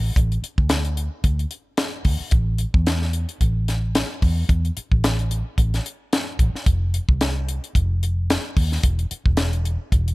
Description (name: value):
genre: straight-eighth soul blues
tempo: 111 BPM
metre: 4/4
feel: swing 55% on 16ths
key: A minor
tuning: A4 = 442 Hz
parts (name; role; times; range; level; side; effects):
- vintage muted fingered electric bass; bass; 0.0-10.1 s; E1 to E2; -22 LUFS; equal; none
- tight funk drum kit; drums; 0.2-10.1 s; hi-hat, kick drum, snare drum; -20 LUFS; equal; none
room: little or no reverb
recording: none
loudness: -19 LUFS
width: side -22 dB against mid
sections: 0.0-10.1 A section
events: none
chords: none